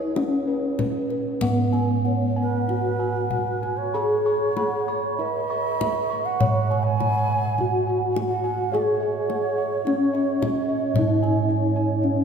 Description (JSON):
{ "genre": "Javanese gamelan", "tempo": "48-57 BPM", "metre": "4/4", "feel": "straight", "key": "C# slendro", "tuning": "A4 = 442 Hz", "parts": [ { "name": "gamelan-type bronze metallophone", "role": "melody", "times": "0.0-12.2 s", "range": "B3-40c to C#5", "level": "-24 LUFS", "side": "left 1 dB", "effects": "none" }, { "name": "mellow bansuri", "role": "second line", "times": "0.0-11.4 s", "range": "G#4 to G#5", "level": "-29 LUFS", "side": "right 4 dB", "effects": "none" }, { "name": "gamelan-type bossed gongs", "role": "arpeggios", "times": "0.0-12.1 s", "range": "B4-40c to C#6", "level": "-30 LUFS", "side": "left 1 dB", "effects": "none" }, { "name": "gamelan-type bronze metallophone", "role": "arpeggios", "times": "0.0-12.2 s", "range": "B4-40c to C#6", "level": "-32 LUFS", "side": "right 3 dB", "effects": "none" }, { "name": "gamelan-type bossed gongs", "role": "bass", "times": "0.0-12.2 s", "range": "C#2 to G#4+20c", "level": "-27 LUFS", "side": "right 3 dB", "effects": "none" }, { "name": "kendang", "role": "percussion", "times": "0.2-12.2 s", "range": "none", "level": "-31 LUFS", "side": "left 3 dB", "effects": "none" } ], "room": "wet cathedral reverb, RT60 5.5 s", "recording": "recorded in a church or concert hall", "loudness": "-21 LUFS", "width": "side -6 dB against mid", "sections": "0.0-12.2 A section", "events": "none", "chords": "none" }